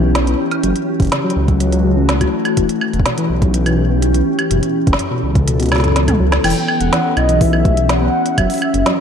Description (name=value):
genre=IDM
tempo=124 BPM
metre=4/4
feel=straight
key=unclear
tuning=A4 = 440 Hz
part: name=glassy FM pad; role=sustained chords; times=0.0-9.0 s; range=E3 to A4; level=-19 LUFS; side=left 1 dB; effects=ensemble chorus, built-in reverb, vintage 12-bit sampler grit
part: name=mellow tine electric piano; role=arpeggios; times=0.0-8.9 s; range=E2 to F#4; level=-20 LUFS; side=left 2 dB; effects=ping-pong delay
part: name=dark detuned saw bass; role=bass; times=0.0-8.8 s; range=E1 to C#2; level=-17 LUFS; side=equal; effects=tube saturation
part: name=organic electronic drum kit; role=drums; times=0.2-9.0 s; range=crash cymbal, hi-hat, snare drum, toms, woodblock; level=-20 LUFS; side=right 1 dB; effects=ping-pong delay
part: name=electronic kick drum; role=drums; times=1.0-8.5 s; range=none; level=-16 LUFS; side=equal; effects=none
part: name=warm velvety synth lead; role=melody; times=6.4-9.0 s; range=D#5 to G5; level=-19 LUFS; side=left 1 dB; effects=chorus, ping-pong delay
room=wet lush hall reverb, RT60 1.9 s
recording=dreamy mix soaked in reverb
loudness=-13 LUFS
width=side -7 dB against mid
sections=0.0-6.4 A section; 6.4-9.0 B section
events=drum fill 5.7-6.4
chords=0.0 Em6; 0.6 F#m7; 2.6 Em6; 4.5 B7sus4/F#; 6.4 Em6; 8.4 F#m7